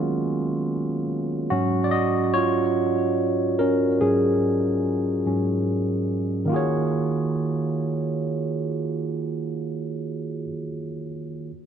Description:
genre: R&B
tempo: 48 BPM (dotted quarters)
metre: 6/8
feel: straight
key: Eb minor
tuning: A4 = 439 Hz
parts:
  - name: barky tine electric piano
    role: solo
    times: 0.0-11.5 s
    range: Ab2 to Eb5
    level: -22 LUFS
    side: right 1 dB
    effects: phaser, digital delay
room: moderate echo chamber reverb, RT60 2.0 s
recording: none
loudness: -22 LUFS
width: side -8 dB against mid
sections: 0.0-6.5 A section; 6.5-9.0 B section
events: tine electric piano solo 0.0-6.5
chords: 0.0 Ebm11; 1.5 Ab7sus4; 6.5 Ebm11

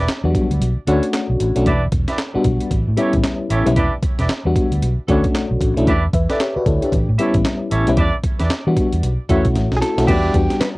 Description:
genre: R&B, new jack swing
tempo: 114 BPM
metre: 4/4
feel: swing 60% on 16ths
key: E dorian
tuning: A4 = 440 Hz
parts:
  - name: dark horn section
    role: stabs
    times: 0.0-10.3 s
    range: C#4 to D5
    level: -25 LUFS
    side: right 2 dB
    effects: cassette tape, analog delay
  - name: vintage muted fingered electric bass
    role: bass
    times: 0.0-10.6 s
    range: E1 to E3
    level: -19 LUFS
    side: equal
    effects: none
  - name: breakbeat sampler-style drum kit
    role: drums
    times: 0.1-10.8 s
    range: crash cymbal, handclaps, hi-hat, kick drum, snare drum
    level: -20 LUFS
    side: equal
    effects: cassette tape
  - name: FM electric piano with tremolo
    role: accompaniment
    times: 0.2-10.8 s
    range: F#3 to E5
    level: -19 LUFS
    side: left 2 dB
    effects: cassette tape
  - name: direct-recorded clean electric guitar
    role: melody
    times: 9.8-10.7 s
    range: G4 to B4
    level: -22 LUFS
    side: right 1 dB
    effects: tremolo, cassette tape
room: little or no reverb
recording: home recording on cassette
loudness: -15 LUFS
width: side -22 dB against mid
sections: 0.0-10.1 A section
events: kick muted 0.6-1.7; drum fill 9.6-10.1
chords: 0.0 Em7; 0.6 Bm9; 1.7 Em7; 2.7 A7; 3.8 Em7; 4.8 Bm9; 5.9 Em7; 6.9 A7; 8.0 Em7; 9.0 B9sus4; 10.1 Em7

